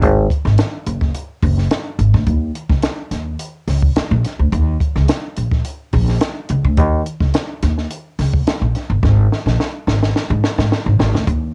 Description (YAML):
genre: funk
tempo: 107 BPM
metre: 4/4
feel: straight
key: unclear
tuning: A4 = 439 Hz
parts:
  - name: upright bass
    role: bass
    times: 0.0-11.5 s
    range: Gb1 to Ab2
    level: -18 LUFS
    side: equal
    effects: none
  - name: compact cocktail drum kit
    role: drums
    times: 0.0-11.4 s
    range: hi-hat, kick drum, snare drum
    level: -21 LUFS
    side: equal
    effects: cassette tape
room: little or no reverb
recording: home recording on cassette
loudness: -17 LUFS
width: mono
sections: 0.0-11.3 A section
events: drum fill 9.0-11.3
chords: none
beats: | 0.02 0.58 1.15 1.71 | 2.27 2.83 3.40 3.96 | 4.52 5.08 5.65 6.21 | 6.77 7.34 7.90 8.46 | 9.02 9.59 10.15 10.71 | 11.28